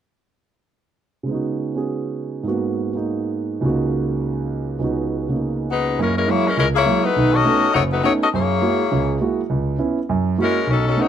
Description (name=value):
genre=jazz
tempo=204 BPM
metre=4/4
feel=swing 60% on 8ths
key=F# mixolydian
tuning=A4 = 440 Hz
part: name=warm concert grand piano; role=accompaniment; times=1.2-11.1 s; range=F#1 to G#4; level=-20 LUFS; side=right 3 dB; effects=none
part: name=bright saxophone section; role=melody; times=5.7-11.1 s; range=F#3 to D#5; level=-18 LUFS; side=left 6 dB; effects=none
room=small room ambience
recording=dry, close 1970s-style studio recording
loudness=-18 LUFS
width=side -9 dB against mid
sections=1.3-6.0 A section; 6.0-11.1 B section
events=none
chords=1.3 C#7sus4; 2.5 G#m9; 3.6 F#69/C#; 4.8 C#9sus4; 6.0 F#9; 7.2 B9; 8.3 F#9; 9.5 C#m7; 10.1 F#9